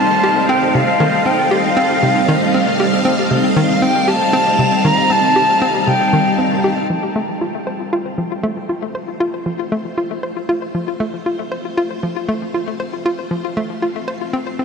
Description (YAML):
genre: ambient, sequencer-driven space music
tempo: 117 BPM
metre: 4/4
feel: straight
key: unclear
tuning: A4 = 439 Hz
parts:
  - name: concert flute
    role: melody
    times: 0.0-6.6 s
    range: F5 to Bb5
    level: -17 LUFS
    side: equal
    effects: ping-pong delay
  - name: string machine, full ensemble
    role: sustained chords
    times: 0.0-14.6 s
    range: G3 to F5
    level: -19 LUFS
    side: equal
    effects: phaser, ensemble chorus
  - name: hollow square pluck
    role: riff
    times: 0.0-14.6 s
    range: C3 to C5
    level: -19 LUFS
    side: left 1 dB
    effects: chorus, ping-pong delay
  - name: twinkling granular texture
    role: texture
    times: 0.0-6.9 s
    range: A3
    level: -27 LUFS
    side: right 1 dB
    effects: built-in reverb
room: wet huge ambient reverb, RT60 8.4 s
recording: none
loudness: -14 LUFS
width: side -5 dB against mid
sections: 0.0-6.9 A section; 6.9-14.6 B section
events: fade-in on string machine 6.9-14.6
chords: 0.0 Cm; 6.9 F